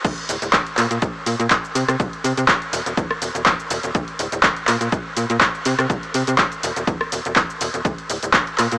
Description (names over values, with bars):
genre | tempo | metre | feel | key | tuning
filtered disco house | 123 BPM | 4/4 | swing 54% on 16ths | unclear | A4 = 440 Hz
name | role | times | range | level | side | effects
slap-like FM bass | bass | 0.0-8.8 s | D1 to C3 | -22 LUFS | equal | sidechain pumping
electronic kick drum | drums | 0.0-8.4 s | none | -24 LUFS | equal | none
punchy analog drum machine | drums | 0.0-8.8 s | cabasa, crash cymbal, handclaps, hi-hat, rim click | -19 LUFS | equal | sidechain pumping on hats, sidechain pumping on perc, sidechain pumping on cymbals
room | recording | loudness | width
wet huge ambient reverb, RT60 8.3 s | dreamy mix soaked in reverb, small speaker sound | -17 LUFS | side -25 dB against mid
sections
0.0-8.8 A section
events
none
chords
none